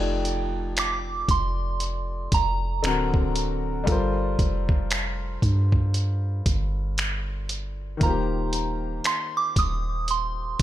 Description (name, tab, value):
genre	contemporary R&B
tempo	58 BPM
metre	4/4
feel	swing 58% on 16ths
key	G minor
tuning	A4 = 439 Hz
part	soft synth bell	melody	0.0-10.6 s	G5 to Eb6	-28 LUFS	right 3 dB	chorus, ping-pong delay
part	warm grand piano	accompaniment	0.0-10.6 s	D3 to D5	-30 LUFS	left 3 dB	none
part	soft 808-style bass	bass	0.0-10.6 s	D1 to G2	-27 LUFS	equal	none
part	dusty soul sampler-style drum kit	drums	0.3-10.6 s	finger snaps, hi-hat, kick drum	-25 LUFS	equal	none
room	digital ambience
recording	none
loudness	-22 LUFS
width	side -13 dB against mid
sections	0.0-10.6 A section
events	none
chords	0.0 F13; 2.8 D7b13; 3.9 Gm11; 8.0 Eb6